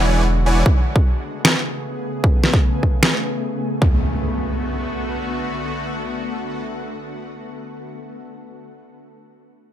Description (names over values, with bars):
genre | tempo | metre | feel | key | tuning
future bass | 152 BPM | 4/4 | half-time | B dorian | A4 = 441 Hz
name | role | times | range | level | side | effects
shimmering ambient pad | sustained chords | 0.0-7.7 s | C#3 to G#4 | -26 LUFS | left 1 dB | chorus, built-in reverb, sidechain pumping
supersaw chords | riff | 0.0-0.6 s | E3 to G#5 | -22 LUFS | right 1 dB | sidechain pumping, dub echo
saturated sub bass | bass | 0.0-0.6 s | E1 | -17 LUFS | equal | sidechain pumping
downlifter and impact | sound effects | 0.0-0.7, 3.8-7.7 s | none | -28 LUFS | equal | none
electronic kick drum | drums | 0.7-3.9 s | none | -15 LUFS | equal | none
electronic finger snaps and snare drum | drums | 1.4-3.1 s | none | -17 LUFS | equal | none
room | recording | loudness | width
light reverb, digital ambience | none | -17 LUFS | side -11 dB against mid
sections
0.0-3.8 A section; 3.8-7.0 B section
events
filter sweep on ambient pad 0.0-3.8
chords
0.0 E13; 0.7 Amaj9; 3.8 Bm7